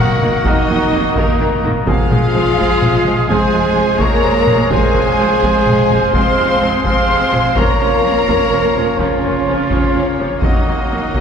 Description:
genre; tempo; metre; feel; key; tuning
cinematic, epic orchestral film score; 84 BPM (dotted quarters); 12/8; straight; F phrygian; A4 = 443 Hz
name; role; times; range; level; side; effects
warm symphonic violin section; melody; 0.0-11.2 s; Bb4 to C6; -22 LUFS; left 5 dB; none
warm symphonic violin section; second line; 0.0-11.2 s; Bb3 to C5; -21 LUFS; left 1 dB; none
clear symphonic viola section; accompaniment; 0.0-11.2 s; Eb3 to Db4; -24 LUFS; right 1 dB; none
bright trombone section; sustained chords; 0.0-11.2 s; Eb3 to Db4; -25 LUFS; right 2 dB; none
chamber organ, soft reed; sustained chords; 0.0-11.2 s; Ab3 to C6; -24 LUFS; equal; none
mellow French horn section; sustained chords; 0.0-11.2 s; Bb3 to C5; -23 LUFS; left 1 dB; none
mellow trumpet section; stabs; 0.0-11.2 s; Eb4 to F5; -18 LUFS; right 2 dB; none
rich symphonic cello section; bass; 0.0-11.2 s; Bb2 to C4; -23 LUFS; right 2 dB; none
rich symphonic double bass section; bass; 0.0-11.2 s; F1; -24 LUFS; right 2 dB; none
taiko ensemble; drums; 0.2-11.2 s; none; -19 LUFS; equal; none
room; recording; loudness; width
wet church reverb, RT60 3.3 s; recorded in a church or concert hall; -12 LUFS; side -7 dB against mid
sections
0.0-11.2 A section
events
none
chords
0.0 Ebm/F; 1.9 Fm; 7.6 Bbm/F; 10.4 Ebm/F

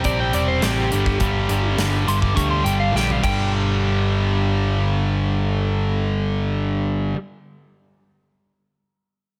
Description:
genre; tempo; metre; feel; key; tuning
hard rock; 104 BPM; 4/4; straight; unclear; A4 = 440 Hz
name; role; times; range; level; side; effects
lightly driven lead guitar; melody; 0.0-3.5 s; G4 to D6; -28 LUFS; equal; analog delay
sludgy distorted guitar; riff; 0.0-7.2 s; G2 to C4; -27 LUFS; equal; overdrive
tight distorted guitar; riff; 0.0-7.2 s; G2 to C4; -28 LUFS; equal; distortion
picked electric bass; bass; 0.0-7.1 s; E1 to D2; -25 LUFS; equal; none
big rock drum kit; drums; 0.0-3.4 s; crash cymbal, hi-hat, kick drum, snare drum, toms; -29 LUFS; equal; none
room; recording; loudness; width
light reverb, small room ambience; none; -20 LUFS; mono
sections
0.0-3.5 A section; 3.5-5.8 B section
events
lead electric guitar solo 0.0-3.5; drum fill 2.9-3.5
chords
0.0 C; 0.9 G5

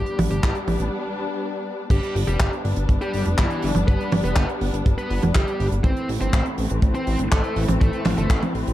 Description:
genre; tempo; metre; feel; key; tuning
italo disco; 122 BPM; 4/4; straight; unclear; A4 = 439 Hz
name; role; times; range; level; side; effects
bluesy overdriven lead guitar; melody; 0.0-8.4 s; E3 to C5; -29 LUFS; equal; distortion, digital delay
rich studio string section; sustained chords; 0.0-8.7 s; E3 to D4; -28 LUFS; left 2 dB; none
chorused synth bass; bass; 0.0-8.7 s; F1 to A1; -24 LUFS; equal; none
tight funk drum kit; drums; 0.1-8.7 s; crash cymbal, handclaps, hi-hat, toms; -26 LUFS; right 2 dB; small room ambience
kick drum; drums; 0.4-8.4 s; none; -20 LUFS; equal; small room ambience
room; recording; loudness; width
light reverb, small room ambience; dark, warm production; -19 LUFS; side -14 dB against mid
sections
0.0-1.9 A section; 1.9-8.7 B section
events
break 0.9-1.9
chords
0.0 G; 5.8 Am

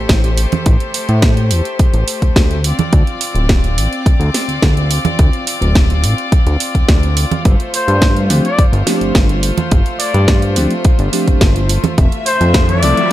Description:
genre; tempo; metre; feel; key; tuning
nu-disco, nu disco; 106 BPM; 4/4; straight; unclear; A4 = 440 Hz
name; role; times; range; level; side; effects
rich chamber string section; sustained chords; 0.0-13.1 s; A3 to E5; -22 LUFS; left 2 dB; sidechain pumping
fat analog bass; bass; 0.0-12.9 s; D1 to A2; -14 LUFS; equal; none
electronic kick drum; drums; 0.1-12.7 s; none; -12 LUFS; equal; none
house drum kit; drums; 0.1-13.1 s; hi-hat, snare drum; -19 LUFS; right 1 dB; none
congas; percussion; 0.5-11.9 s; none; -18 LUFS; right 5 dB; none
warm trumpet section; melody; 7.7-13.1 s; C5 to D5; -18 LUFS; left 2 dB; vintage 12-bit sampler grit, ping-pong delay
bell-like tine electric piano; accompaniment; 8.3-13.0 s; F3 to A4; -19 LUFS; equal; phaser, sidechain pumping, ping-pong delay
riser; sound effects; 12.3-13.1 s; none; -22 LUFS; right 1 dB; none
room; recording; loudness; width
little or no reverb; none; -11 LUFS; side -14 dB against mid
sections
0.0-13.1 A section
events
riser 12.3-13.1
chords
0.0 Am7; 2.6 Dm7; 7.5 G9sus4; 12.0 Fmaj7

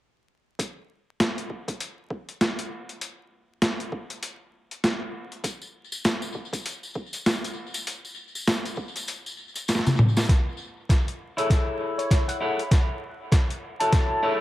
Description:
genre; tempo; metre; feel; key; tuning
glitch hop; 99 BPM; 4/4; swing 59% on 16ths; F# minor; A4 = 440 Hz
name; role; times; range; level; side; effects
boom bap sampler-style drum kit; drums; 0.6-14.1 s; hi-hat, snare drum, toms; -25 LUFS; equal; overdrive, high-pass filter on hats, high-pass filter on snare, high-pass filter on toms, high-pass filter on room
electronic kick drum; drums; 0.6-14.1 s; none; -22 LUFS; equal; overdrive, high-pass filter on kick, high-pass filter on room
tambourine; percussion; 5.4-10.3 s; none; -35 LUFS; left 2 dB; tape echo
clean electric guitar; stabs; 11.4-14.4 s; E4 to C#5; -28 LUFS; left 1 dB; sidechain pumping, low-pass filter, tape echo
sync lead; melody; 12.0-14.4 s; C#5 to A5; -28 LUFS; equal; analog chorus, tape echo
room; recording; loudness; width
moderate spring reverb, RT60 1.9 s; echo-heavy mix, vinyl crackle; -24 LUFS; side -15 dB against mid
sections
0.6-10.3 A section; 10.3-14.4 B section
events
kick drops out 9.7-10.3; drum fill 9.7-10.3, 10.3-14.4; build-up 10.3-14.4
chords
0.6 N.C.; 10.3 F#m9 (rootless)

